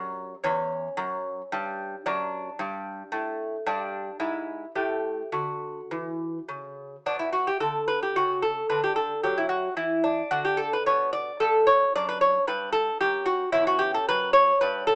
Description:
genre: classical, baroque-style dance for lute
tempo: 111 BPM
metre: 3/4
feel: rubato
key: D major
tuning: A4 = 440 Hz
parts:
  - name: lute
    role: solo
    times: 0.0-14.9 s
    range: E2 to D5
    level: -23 LUFS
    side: equal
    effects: none
room: light reverb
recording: band playing live in one room, small speaker sound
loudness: -23 LUFS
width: side -37 dB against mid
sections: 0.0-7.1 A section; 7.1-14.9 A section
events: none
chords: 0.4 Em69; 2.0 D/F#; 3.7 G5; 4.2 E/G#; 4.7 Gsus2/A; 5.3 D; 7.1 Bm; 8.7 Dadd9; 10.3 Gadd9(#11); 12.0 D/F#; 13.5 Em69

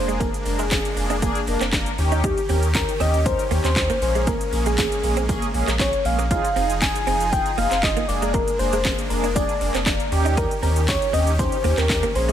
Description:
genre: dance-pop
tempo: 118 BPM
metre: 4/4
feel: straight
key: unclear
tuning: A4 = 440 Hz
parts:
  - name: soft struck synth lead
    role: melody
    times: 0.0-12.3 s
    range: G4 to Ab5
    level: -24 LUFS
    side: left 2 dB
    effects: chorus, digital delay
  - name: mellow synth brass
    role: accompaniment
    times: 0.0-12.3 s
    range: Bb3 to Bb4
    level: -28 LUFS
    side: right 1 dB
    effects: chorus, sidechain pumping
  - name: supersaw chords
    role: sustained chords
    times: 0.0-12.3 s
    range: Eb3 to Ab4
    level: -31 LUFS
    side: right 1 dB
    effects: sidechain pumping
  - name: sub bass with octave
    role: bass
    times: 0.0-12.3 s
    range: F1 to Eb2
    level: -24 LUFS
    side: equal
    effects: sidechain pumping
  - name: direct-recorded clean electric guitar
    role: riff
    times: 0.1-12.3 s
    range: Ab3 to F4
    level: -30 LUFS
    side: right 9 dB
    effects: ensemble chorus
  - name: house drum kit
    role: drums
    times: 0.1-12.3 s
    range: handclaps, hi-hat, kick drum, shaker, snare drum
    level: -24 LUFS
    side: equal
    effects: overdrive
  - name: tambourine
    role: percussion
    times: 0.2-12.3 s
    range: none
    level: -40 LUFS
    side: left 7 dB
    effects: none
room: digital ambience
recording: none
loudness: -19 LUFS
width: side -10 dB against mid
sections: 0.0-12.3 A section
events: none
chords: 0.0 Bb7/F; 2.0 Eb7; 4.0 Bbm7; 6.3 Fm7; 8.1 Bb7/F; 10.1 Eb7

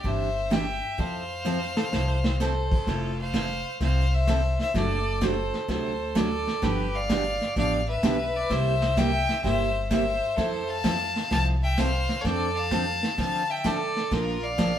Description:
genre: country, western swing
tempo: 128 BPM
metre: 4/4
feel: swing 68% on 8ths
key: F major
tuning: A4 = 441 Hz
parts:
  - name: clear fiddle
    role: melody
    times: 0.0-14.8 s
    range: A4 to A5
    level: -29 LUFS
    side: left 3 dB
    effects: none
  - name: bright fiddle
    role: second line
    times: 0.0-14.8 s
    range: F4 to F5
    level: -32 LUFS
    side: right 2 dB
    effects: none
  - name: picked steel-string acoustic guitar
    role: accompaniment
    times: 0.0-14.7 s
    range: C3 to Bb4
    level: -30 LUFS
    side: right 2 dB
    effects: none
  - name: upright bass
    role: bass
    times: 0.0-14.8 s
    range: F1 to D3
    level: -29 LUFS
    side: equal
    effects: none
  - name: vintage brush drum kit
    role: drums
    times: 0.0-14.8 s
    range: brushed snare drum, crash cymbal, hi-hat, kick drum, snare drum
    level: -29 LUFS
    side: right 1 dB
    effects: none
  - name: clean lap steel guitar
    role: second line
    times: 1.8-2.8 s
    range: A4 to C5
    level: -35 LUFS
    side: left 4 dB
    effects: none
room: moderate stone room reverb, RT60 1.0 s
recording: band playing live in one room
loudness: -23 LUFS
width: side -10 dB against mid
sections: 0.0-2.9 A section; 2.9-14.8 B section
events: drum fill 1.5-2.4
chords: 0.0 Cadd9; 1.0 Fmaj7; 4.7 D7/F#; 6.6 G7; 8.5 C7; 10.4 Fmaj7; 12.2 Dm7/F; 14.1 Bb

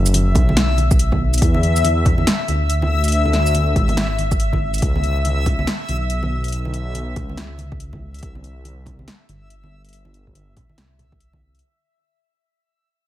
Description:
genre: deep dubstep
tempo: 141 BPM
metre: 4/4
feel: swing 61% on 16ths, half-time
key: unclear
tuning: A4 = 440 Hz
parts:
  - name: dark detuned saw bass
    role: bass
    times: 0.0-11.6 s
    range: F#1 to E2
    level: -19 LUFS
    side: equal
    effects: none
  - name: backwards swelling texture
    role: texture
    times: 0.0-11.6 s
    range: E5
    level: -24 LUFS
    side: left 4 dB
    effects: built-in reverb
  - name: deep house drum kit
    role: drums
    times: 0.1-11.7 s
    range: hi-hat, shaker, snare drum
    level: -23 LUFS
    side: equal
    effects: overdrive
  - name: congas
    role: percussion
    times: 0.1-11.4 s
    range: none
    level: -27 LUFS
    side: right 2 dB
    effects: dub echo
  - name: electronic kick drum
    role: drums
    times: 0.4-11.4 s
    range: none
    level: -19 LUFS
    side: equal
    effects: overdrive
room: digital ambience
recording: none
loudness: -16 LUFS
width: side -13 dB against mid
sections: 0.0-11.6 A section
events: fade-out 0.0-11.6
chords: 0.0 B5; 1.4 E; 4.8 Bsus24; 8.2 C

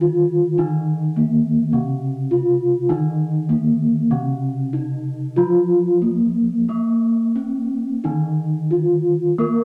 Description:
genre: gamelan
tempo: 89-105 BPM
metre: 4/4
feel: straight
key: unclear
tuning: A4 = 439 Hz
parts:
  - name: gamelan-type bronze metallophone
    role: melody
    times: 0.0-9.6 s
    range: Bb3 to Bb4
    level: -21 LUFS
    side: equal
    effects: none
  - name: gamelan-type bronze metallophone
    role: accompaniment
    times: 0.0-9.6 s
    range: Db3-45c to Bb3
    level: -24 LUFS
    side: equal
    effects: none
room: wet studio ambience, RT60 0.5 s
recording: none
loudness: -19 LUFS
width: mono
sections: 0.0-6.7 A section; 6.7-9.6 B section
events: none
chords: none

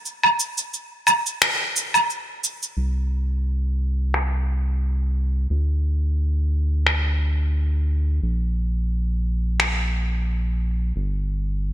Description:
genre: organic downtempo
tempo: 88 BPM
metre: 4/4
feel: swing 54% on 16ths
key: unclear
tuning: A4 = 440 Hz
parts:
  - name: electronic shaker, woodblock and finger snaps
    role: drums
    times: 0.1-9.7 s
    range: none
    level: -20 LUFS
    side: equal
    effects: low-pass filter on snare, low-pass filter on perc, low-pass filter on room, gated reverb
  - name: round analog bass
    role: bass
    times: 2.8-11.7 s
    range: G1 to D2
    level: -21 LUFS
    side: equal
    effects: none
room: light reverb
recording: bright 1980s-style digital production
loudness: -20 LUFS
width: side -12 dB against mid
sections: 0.0-2.8 A section; 2.8-11.7 B section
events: break 0.1-2.8; filter sweep on drum 2.8-11.7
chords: none

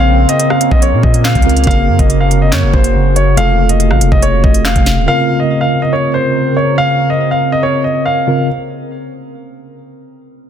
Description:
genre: hip hop, drill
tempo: 141 BPM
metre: 4/4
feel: half-time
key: Bb harmonic minor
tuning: A4 = 440 Hz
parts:
  - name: warm concert grand piano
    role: melody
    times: 0.0-8.5 s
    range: C5 to F5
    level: -15 LUFS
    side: equal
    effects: digital delay
  - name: mellow tine electric piano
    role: accompaniment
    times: 0.0-8.5 s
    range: C3 to Bb4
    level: -16 LUFS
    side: right 1 dB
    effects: overdrive, medium stereo tremolo
  - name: deep dark ambient pad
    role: sustained chords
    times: 0.0-8.4 s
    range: C3 to Bb4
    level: -19 LUFS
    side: left 1 dB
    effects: chorus, built-in reverb
  - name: long sustained 808-style bass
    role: bass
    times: 0.0-5.1 s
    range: Eb1 to Bb2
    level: -13 LUFS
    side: equal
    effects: none
  - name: drill drum kit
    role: drums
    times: 0.3-5.0 s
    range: handclaps, hi-hat, kick drum, rim click, snare drum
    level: -13 LUFS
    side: equal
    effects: none
room: light reverb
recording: dense, heavily limited modern master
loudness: -9 LUFS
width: side -9 dB against mid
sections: 0.0-5.1 A section; 5.1-8.5 B section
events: none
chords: 0.0 Bbmadd9; 1.7 Gb; 3.4 F; 5.1 Bbmadd9

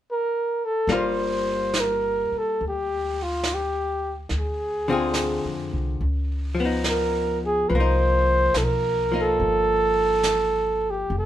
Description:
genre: jazz ballad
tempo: 70 BPM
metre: 4/4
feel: swing 66% on 8ths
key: G minor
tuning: A4 = 442 Hz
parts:
  - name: mellow flugelhorn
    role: melody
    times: 0.1-11.3 s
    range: F4 to C5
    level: -23 LUFS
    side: right 1 dB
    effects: none
  - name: archtop guitar, miked and amplified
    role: accompaniment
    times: 0.9-11.1 s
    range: D3 to Ab4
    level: -27 LUFS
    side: left 3 dB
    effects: none
  - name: upright bass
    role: bass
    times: 0.9-11.3 s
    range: F1 to F2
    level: -28 LUFS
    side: equal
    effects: none
  - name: vintage brush drum kit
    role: drums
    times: 0.9-11.3 s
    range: brushed snare drum, hi-hat, snare drum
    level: -32 LUFS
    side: right 3 dB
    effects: none
room: moderate studio reverb, RT60 0.5 s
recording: minimal, uncompressed stereo recording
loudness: -21 LUFS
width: side -12 dB against mid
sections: 0.9-11.3 A section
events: none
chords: 0.0 N.C.; 0.9 Gm7; 4.3 Dm7b5; 6.0 C#9; 7.7 Cm7

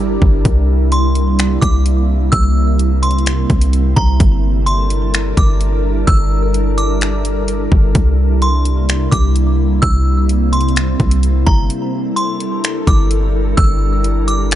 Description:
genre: hip hop, atmospheric cloud-rap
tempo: 128 BPM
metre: 4/4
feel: half-time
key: G dorian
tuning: A4 = 440 Hz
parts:
  - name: glassy FM pad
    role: sustained chords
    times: 0.0-14.6 s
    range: C3 to Bb4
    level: -19 LUFS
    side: equal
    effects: ensemble chorus, built-in reverb, sidechain pumping
  - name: warm 808-style bass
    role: bass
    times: 0.0-14.6 s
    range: G1 to C2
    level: -14 LUFS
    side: equal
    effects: none
  - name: trap drum kit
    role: drums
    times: 0.2-14.6 s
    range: finger snaps, hi-hat, kick drum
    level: -15 LUFS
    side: equal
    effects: overdrive
  - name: delicate synth tine bell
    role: melody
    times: 0.9-14.6 s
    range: Bb5 to E6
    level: -23 LUFS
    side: right 1 dB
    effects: chorus, tape echo
room: digital ambience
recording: nothing above 11.0 kHz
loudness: -12 LUFS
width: side -12 dB against mid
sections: 0.0-14.6 A section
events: break 11.7-12.6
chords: 0.5 C7; 4.2 Gm69; 8.0 C7; 11.7 Gm69

